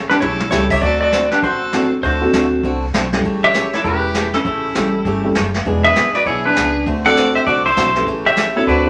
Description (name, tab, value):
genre	country, western swing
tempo	199 BPM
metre	4/4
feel	swing 62% on 8ths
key	A mixolydian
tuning	A4 = 440 Hz
part	picked swing-style acoustic guitar	accompaniment	0.0-8.9 s	C#3 to A4	-26 LUFS	equal	none
part	upright bass	bass	0.0-8.9 s	E1 to D2	-27 LUFS	equal	none
part	clean lap steel guitar	melody	0.1-8.9 s	C#4 to F#5	-19 LUFS	equal	none
part	clear fiddle	second line	0.1-8.9 s	E4 to D5	-27 LUFS	equal	none
part	vintage brush drum kit	drums	0.1-8.9 s	brushed snare drum, crash cymbal, hi-hat, kick drum, snare drum, toms	-26 LUFS	equal	none
part	dark upright piano	accompaniment	0.5-8.9 s	F#3 to C5	-21 LUFS	equal	none
room	wet studio reverb, RT60 0.6 s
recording	none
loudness	-16 LUFS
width	mono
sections	0.0-8.9 A section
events	drum fill 0.2-0.5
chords	0.0 A7; 0.8 D7; 3.2 A7; 5.7 E7; 6.9 D7; 8.1 A7